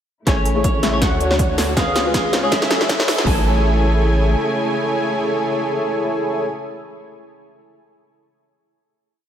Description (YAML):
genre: future bass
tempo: 160 BPM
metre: 4/4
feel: swing 55% on 16ths, half-time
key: A major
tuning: A4 = 440 Hz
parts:
  - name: clean electric guitar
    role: melody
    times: 0.3-6.4 s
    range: G#3 to C#5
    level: -26 LUFS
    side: equal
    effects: wide subtle chorus, sidechain pumping, diffuse ambient delay
  - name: felt-muted upright piano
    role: accompaniment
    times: 0.3-6.5 s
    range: C#3 to G#5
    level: -28 LUFS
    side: left 2 dB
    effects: ensemble chorus, sidechain pumping, diffuse ambient delay
  - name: clear studio string section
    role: sustained chords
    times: 0.3-6.4 s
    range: C#3 to G#5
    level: -29 LUFS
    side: right 1 dB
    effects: sidechain pumping, low-pass filter
  - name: soft round pluck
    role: arpeggios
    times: 0.3-3.4 s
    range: F#4 to E#5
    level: -28 LUFS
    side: left 2 dB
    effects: none
  - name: wide unison pluck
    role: arpeggios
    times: 0.3-6.4 s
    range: E5 to G#5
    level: -30 LUFS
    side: equal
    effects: sidechain pumping, diffuse ambient delay
  - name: soft supersaw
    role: riff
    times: 0.3-6.4 s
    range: C#4 to G#5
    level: -22 LUFS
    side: equal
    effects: cassette tape, sidechain pumping, low-pass filter, diffuse ambient delay
  - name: saturated sub bass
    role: bass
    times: 0.3-4.4 s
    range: F#1 to D2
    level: -20 LUFS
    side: equal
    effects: sidechain pumping
  - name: big-room dance drum kit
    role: drums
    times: 0.3-3.4 s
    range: hi-hat, kick drum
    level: -21 LUFS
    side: equal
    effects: none
  - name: big-room dance drum kit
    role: drums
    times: 0.3-3.3 s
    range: hi-hat, snare drum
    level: -21 LUFS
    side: equal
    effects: none
room: wet church reverb, RT60 2.7 s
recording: dreamy mix soaked in reverb, high-pass filter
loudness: -16 LUFS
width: side -9 dB against mid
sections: 0.3-3.3 build; 3.3-6.3 final chord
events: build-up 0.3-3.3; drum fill 0.3-3.3; filter sweep 0.3-3.3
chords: 0.3 Amaj7; 1.0 Dmaj7; 1.8 C#7; 2.5 F#m7; 3.3 Amaj7